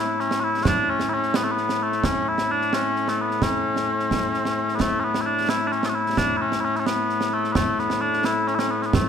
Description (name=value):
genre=scottish traditional, Scottish pipe music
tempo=87 BPM (dotted quarters)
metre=6/8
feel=straight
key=A major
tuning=A4 = 436 Hz
part: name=mellow small bagpipes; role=melody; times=0.0-9.1 s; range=A2 to A4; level=-21 LUFS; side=left 1 dB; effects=none
part: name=concert snare drum and concert bass drum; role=drums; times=0.2-9.0 s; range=none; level=-27 LUFS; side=right 3 dB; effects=none
room=moderate scoring stage reverb, RT60 1.5 s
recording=minimal, uncompressed stereo recording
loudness=-20 LUFS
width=side -8 dB against mid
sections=0.0-9.1 A section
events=none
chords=none